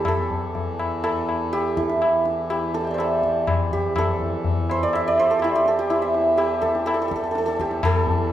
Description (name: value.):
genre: indian classical, Hindustani.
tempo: 123 BPM.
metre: 4/4.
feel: straight.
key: E raga malkauns.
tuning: A4 = 442 Hz.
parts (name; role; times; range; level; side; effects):
santur; melody; 0.0-8.3 s; E4 to A5; -21 LUFS; right 1 dB; none.
hand-pumped harmonium; drone; 0.0-8.3 s; E2 to E3; -30 LUFS; equal; none.
tabla; percussion; 0.1-8.3 s; none; -25 LUFS; left 3 dB; none.
room: wet recital hall reverb, RT60 1.8 s.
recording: recorded in a church or concert hall.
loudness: -20 LUFS.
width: side -12 dB against mid.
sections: 0.0-7.8 A section.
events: none.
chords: none.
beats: | 0.05 0.54 1.03 1.52 | 2.01 2.50 2.98 3.47 | 3.96 4.44 4.93 5.41 | 5.90 6.38 6.87 7.35 | 7.83 8.32.